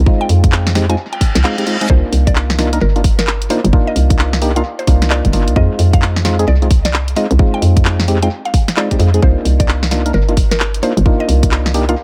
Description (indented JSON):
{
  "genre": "UK garage, two-step garage",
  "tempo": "131 BPM",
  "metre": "4/4",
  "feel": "swing 63% on 16ths",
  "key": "C minor",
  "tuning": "A4 = 443 Hz",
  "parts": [
    { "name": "mallet-like synth pluck", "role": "melody", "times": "0.0-12.0 s", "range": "Bb4 to Ab5", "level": "-27 LUFS", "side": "equal", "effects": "chorus, dub echo" },
    { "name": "hollow knocking FM bass", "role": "bass", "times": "0.0-12.0 s", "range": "G1 to F2", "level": "-16 LUFS", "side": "equal", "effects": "none" },
    { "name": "percussive organ stab", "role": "stabs", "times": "0.1-11.9 s", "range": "Ab3 to Bb4", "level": "-21 LUFS", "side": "equal", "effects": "chorus, tape echo" },
    { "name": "electronic kick drum", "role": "drums", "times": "0.1-11.5 s", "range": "none", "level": "-15 LUFS", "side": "equal", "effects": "none" },
    { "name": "garage drum kit", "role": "drums", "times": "0.3-12.0 s", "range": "handclaps, hi-hat, snare drum", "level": "-22 LUFS", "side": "equal", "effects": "tape echo" },
    { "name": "reverse cymbal", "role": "sound effects", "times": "1.1-1.9 s", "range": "none", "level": "-26 LUFS", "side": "equal", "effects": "none" }
  ],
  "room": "light reverb, digital ambience",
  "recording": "echo-heavy mix",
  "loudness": "-14 LUFS",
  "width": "mono",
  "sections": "0.0-12.0 A section",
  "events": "reverse cymbal 1.1-1.9",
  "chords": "0.0 Fm7; 1.9 Cm11; 5.6 Fm7; 9.2 Cm11"
}